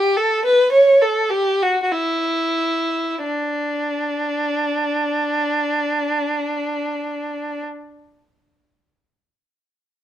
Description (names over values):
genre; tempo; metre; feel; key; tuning
classical, baroque-style suite movement for unaccompanied violin; 44-55 BPM; 4/4; rubato; D major; A4 = 440 Hz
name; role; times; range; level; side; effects
dark violin; solo; 0.0-7.6 s; D4 to C#5; -18 LUFS; equal; none
room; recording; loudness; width
light reverb; minimal, uncompressed stereo recording; -18 LUFS; side -11 dB against mid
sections
0.0-3.2 A section; 3.2-8.2 B section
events
slowing down 0.0-3.2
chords
none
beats
0.71 1.91 | 3.22 4.46 5.70 6.94